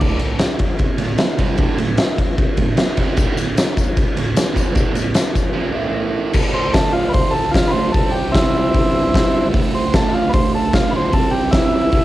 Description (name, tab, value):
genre	garage rock duo or trio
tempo	151 BPM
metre	4/4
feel	straight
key	D minor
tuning	A4 = 440 Hz
part	thick fuzz guitar	riff	0.0-12.0 s	D2 to C4	-22 LUFS	right 5 dB	distortion, cassette tape
part	oversized low-tuned drum kit	drums	0.0-12.0 s	crash cymbal, hi-hat, kick drum, ride cymbal, snare drum	-16 LUFS	equal	cassette tape
part	tambourine	percussion	3.2-5.5 s	none	-34 LUFS	left 9 dB	none
part	overdriven combo organ	melody	6.5-12.0 s	C4 to C5	-19 LUFS	equal	cassette tape
room	light reverb, small room ambience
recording	home recording on cassette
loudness	-15 LUFS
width	side -15 dB against mid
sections	0.0-6.4 A section; 6.4-12.0 B section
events	break 5.6-6.4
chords	0.0 D5; 5.8 A5; 6.4 D5; 7.9 C; 8.7 G5; 9.5 D5; 11.1 C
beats	| 0.01 0.41 0.80 1.20 | 1.59 1.99 2.38 2.78 | 3.18 3.57 3.97 4.37 | 4.76 5.16 5.56 5.96 | 6.35 6.75 7.15 7.55 | 7.95 8.34 8.74 9.14 | 9.54 9.94 10.33 10.73 | 11.13 11.53 11.93